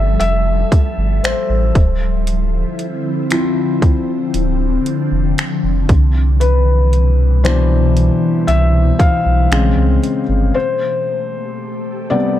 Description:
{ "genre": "contemporary R&B", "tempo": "58 BPM", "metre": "4/4", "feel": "straight", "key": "C major", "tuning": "A4 = 440 Hz", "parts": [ { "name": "felt-muted upright piano", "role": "accompaniment", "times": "0.0-12.4 s", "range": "B2 to F5", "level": "-19 LUFS", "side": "left 3 dB", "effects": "none" }, { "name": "ethereal airy pad", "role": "sustained chords", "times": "0.0-12.4 s", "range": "B2 to E5", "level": "-20 LUFS", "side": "left 1 dB", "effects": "ensemble chorus, built-in reverb, phaser, sidechain pumping" }, { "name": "saturated sub bass", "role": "bass", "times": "0.0-10.5 s", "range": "D1 to C2", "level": "-14 LUFS", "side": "equal", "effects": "none" }, { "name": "trap drum kit", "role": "drums", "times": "0.2-10.3 s", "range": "finger snaps, hi-hat, kick drum", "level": "-15 LUFS", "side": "equal", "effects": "none" } ], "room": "light reverb, digital ambience", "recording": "dark, warm production", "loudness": "-13 LUFS", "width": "side -12 dB against mid", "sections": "0.0-12.4 A section", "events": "felt piano solo 0.0-12.4; break 10.5-12.4", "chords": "0.0 G13; 1.8 Dm9; 5.9 Cmaj7; 9.5 Bbm9; 10.5 Am9" }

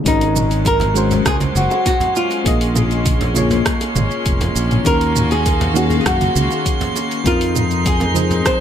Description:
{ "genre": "sunset chillout", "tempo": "100 BPM", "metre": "4/4", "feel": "straight", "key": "unclear", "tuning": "A4 = 441 Hz", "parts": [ { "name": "mellow FM electric piano", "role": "accompaniment", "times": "0.0-8.6 s", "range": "Eb3 to Eb5", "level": "-21 LUFS", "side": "left 2 dB", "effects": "chorus, auto-pan, tape echo" }, { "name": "flamenco guitar", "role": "melody", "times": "0.1-8.6 s", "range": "Eb4 to C5", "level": "-20 LUFS", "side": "equal", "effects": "tape echo" }, { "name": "rich chamber string section", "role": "sustained chords", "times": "0.1-8.6 s", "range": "Eb3 to F5", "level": "-26 LUFS", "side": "left 1 dB", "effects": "none" }, { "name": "modern bright fingered electric bass", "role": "bass", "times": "0.1-8.4 s", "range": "F1 to Gb2", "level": "-20 LUFS", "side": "equal", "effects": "none" }, { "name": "deep house drum kit", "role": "drums", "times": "0.1-8.6 s", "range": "hi-hat, rim click, shaker, toms", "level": "-22 LUFS", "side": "right 1 dB", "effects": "low-pass filter on toms, low-pass filter on hats, low-pass filter on perc, low-pass filter on snare, low-pass filter on room" }, { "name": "electronic kick drum", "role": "drums", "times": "0.1-8.6 s", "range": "none", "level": "-20 LUFS", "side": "equal", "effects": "none" }, { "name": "drifting glass-harmonics texture", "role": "texture", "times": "0.5-8.6 s", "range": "C6", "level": "-28 LUFS", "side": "right 4 dB", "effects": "chorus, built-in reverb" }, { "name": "bongos and congas", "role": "percussion", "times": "0.2-8.4 s", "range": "none", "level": "-24 LUFS", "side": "right 3 dB", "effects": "none" } ], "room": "little or no reverb", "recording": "none", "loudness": "-14 LUFS", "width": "side -9 dB against mid", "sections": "0.1-8.6 A section", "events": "none", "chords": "0.1 Ab9sus4; 2.5 Bbm7; 4.9 Ebm7; 7.3 Fm7" }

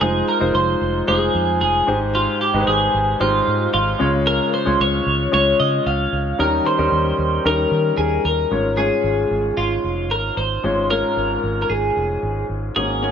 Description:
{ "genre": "1980s-style pop", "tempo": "113 BPM", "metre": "4/4", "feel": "straight", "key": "unclear", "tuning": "A4 = 439 Hz", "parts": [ { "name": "twelve-string electric guitar", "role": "melody", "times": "0.0-13.1 s", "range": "F4 to F5", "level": "-20 LUFS", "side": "right 1 dB", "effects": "lush chorus, digital delay" }, { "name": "clear baby grand piano", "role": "accompaniment", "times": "0.0-13.1 s", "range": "Ab2 to Db5", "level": "-21 LUFS", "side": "left 2 dB", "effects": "none" }, { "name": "vintage muted fingered electric bass", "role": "bass", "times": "0.0-13.1 s", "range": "F1 to Eb3", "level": "-24 LUFS", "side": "right 1 dB", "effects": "none" } ], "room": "moderate plate reverb, RT60 3.2 s", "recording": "none", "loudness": "-16 LUFS", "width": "side -8 dB against mid", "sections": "0.0-8.5 A section; 8.5-13.1 B section", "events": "none", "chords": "0.0 Fm7; 1.9 Abmaj7; 4.0 Db; 6.4 Eb7; 8.5 Db" }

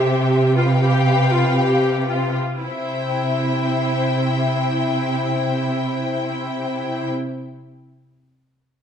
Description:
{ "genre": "classical", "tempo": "free time", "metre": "none", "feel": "none", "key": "C major", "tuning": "A4 = 441 Hz", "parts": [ { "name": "warm symphonic violin section", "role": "melody", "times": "0.0-7.1 s", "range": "G5", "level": "-28 LUFS", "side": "left 6 dB", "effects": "none" }, { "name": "warm studio violin section", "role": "second line", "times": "0.0-7.1 s", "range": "B4 to F5", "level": "-25 LUFS", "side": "left 4 dB", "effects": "none" }, { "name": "clear symphonic viola section", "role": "accompaniment", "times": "0.0-7.1 s", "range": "E4 to G4", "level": "-24 LUFS", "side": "equal", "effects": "none" }, { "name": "rich symphonic cello section", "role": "bass", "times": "0.0-7.1 s", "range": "C3", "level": "-21 LUFS", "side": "right 2 dB", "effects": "none" } ], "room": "moderate recital hall reverb, RT60 1.3 s", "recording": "dark, warm production", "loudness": "-18 LUFS", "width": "side -8 dB against mid", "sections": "0.0-2.6 A section; 2.6-6.6 B section", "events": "slowing down 0.0-2.6", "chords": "0.0 C; 0.6 G7/C; 2.6 C" }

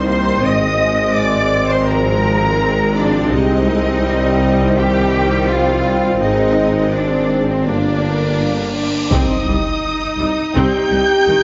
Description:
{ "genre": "cinematic, hybrid orchestral and electronic film score", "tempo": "83 BPM", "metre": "4/4", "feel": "straight", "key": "C minor", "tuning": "A4 = 442 Hz", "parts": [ { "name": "rich symphonic violin section", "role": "second line", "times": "0.0-11.4 s", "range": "C5 to Eb6", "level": "-28 LUFS", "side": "equal", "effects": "none" }, { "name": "clear symphonic viola section", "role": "accompaniment", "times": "0.0-11.4 s", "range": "Eb3 to Eb4", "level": "-24 LUFS", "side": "equal", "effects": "none" }, { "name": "mellow French horn section", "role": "sustained chords", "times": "0.0-11.4 s", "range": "Eb3 to G4", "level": "-24 LUFS", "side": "equal", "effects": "none" }, { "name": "warm trombone section", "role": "sustained chords", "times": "0.0-10.8 s", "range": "Eb3 to C4", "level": "-24 LUFS", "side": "equal", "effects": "none" }, { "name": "clear symphonic double bass section", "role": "bass", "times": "0.0-11.4 s", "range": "G1 to C2", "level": "-25 LUFS", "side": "equal", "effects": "none" }, { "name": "mellow tuba", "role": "bass", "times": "0.0-11.4 s", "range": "G1 to C2", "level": "-24 LUFS", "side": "equal", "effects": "none" }, { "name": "rich symphonic cello section", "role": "bass", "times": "0.0-11.4 s", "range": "C2 to Eb5", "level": "-22 LUFS", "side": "equal", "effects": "none" }, { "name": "cymbal swell and impact", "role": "sound effects", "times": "8.1-11.4 s", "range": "none", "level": "-26 LUFS", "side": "equal", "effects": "none" }, { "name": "warm symphonic violin section", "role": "melody", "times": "8.8-11.4 s", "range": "D6 to G6", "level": "-24 LUFS", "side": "equal", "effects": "none" } ], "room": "moderate scoring stage reverb, RT60 1.8 s", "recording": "nothing above 7.6 kHz", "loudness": "-16 LUFS", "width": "mono", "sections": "0.0-9.1 A section; 9.1-11.4 A section", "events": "cymbal swell 8.1-9.1; impact 9.1-11.4", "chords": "0.4 Ab; 3.3 Cm; 6.2 Ab; 7.7 Gm; 9.1 Cm" }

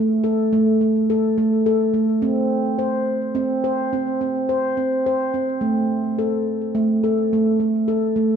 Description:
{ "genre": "world meditative, meditative tuned percussion", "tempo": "71 BPM (dotted quarters)", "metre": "6/8", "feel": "straight", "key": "A minor", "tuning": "A4 = 440 Hz", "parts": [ { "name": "handpan", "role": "solo", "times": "0.0-8.4 s", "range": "A3 to C5", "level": "-18 LUFS", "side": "equal", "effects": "ping-pong delay" } ], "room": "wet echo chamber reverb, RT60 1.6 s", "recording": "cassette tape", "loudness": "-18 LUFS", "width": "side -7 dB against mid", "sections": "0.0-8.4 A section", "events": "none", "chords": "none" }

